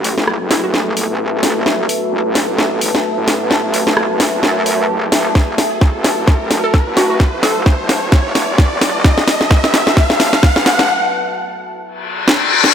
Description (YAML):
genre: bass house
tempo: 130 BPM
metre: 4/4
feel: swing 57% on 16ths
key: F# minor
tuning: A4 = 440 Hz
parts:
  - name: dark analog pad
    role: sustained chords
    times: 0.0-10.9 s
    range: A3 to A4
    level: -26 LUFS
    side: equal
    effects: chorus, phaser, sidechain pumping
  - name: metallic wobble bass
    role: bass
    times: 0.0-10.9 s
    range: E1 to F#2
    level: -21 LUFS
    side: equal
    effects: chorus, sidechain pumping, high-pass filter
  - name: house drum kit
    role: drums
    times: 0.0-12.7 s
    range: hi-hat, rim click, snare drum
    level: -16 LUFS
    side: equal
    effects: none
  - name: riser and reverse cymbal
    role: sound effects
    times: 1.9-12.7 s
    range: none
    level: -19 LUFS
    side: left 2 dB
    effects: none
  - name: deep dark ambient pad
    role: texture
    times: 0.0-10.9 s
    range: F#4 to A5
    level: -21 LUFS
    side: left 1 dB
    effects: chorus, built-in reverb, sidechain pumping
  - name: hollow square pluck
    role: melody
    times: 0.5-1.1, 6.6-7.9 s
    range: E4 to A4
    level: -20 LUFS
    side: equal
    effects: lush chorus, cassette tape, tape echo
  - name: electronic kick drum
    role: drums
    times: 5.4-10.5 s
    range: none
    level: -11 LUFS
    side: equal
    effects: none
room: moderate lush hall reverb, RT60 1.9 s, digital ambience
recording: none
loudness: -12 LUFS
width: side -8 dB against mid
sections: 0.0-12.7 A section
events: build-up 0.0-12.7; drum fill 0.0-10.9, 12.3-12.7; riser 1.9-10.9; break 10.9-12.7; reverse cymbal 12.0-12.7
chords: 0.0 F#m